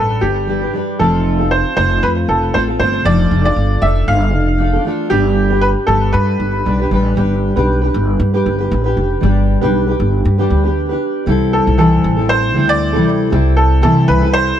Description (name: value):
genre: acoustic pop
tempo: 117 BPM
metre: 4/4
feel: swing 55% on 16ths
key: unclear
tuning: A4 = 439 Hz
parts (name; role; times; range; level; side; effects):
- bright upright piano; melody; 0.0-6.9, 11.5-14.6 s; G4 to F5; -17 LUFS; right 1 dB; digital delay
- fingerpicked steel-string acoustic guitar; accompaniment; 0.0-14.6 s; C3 to B4; -17 LUFS; equal; double-tracked left and right
- upright bass; bass; 0.0-14.5 s; F1 to C3; -16 LUFS; equal; none
room: small room ambience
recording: dark, warm production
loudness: -12 LUFS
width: side -10 dB against mid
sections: 0.0-7.2 A section; 7.2-11.3 B section; 11.3-14.6 C section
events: none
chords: 0.0 G; 1.0 F; 3.1 Dm/F; 5.1 G; 11.3 C6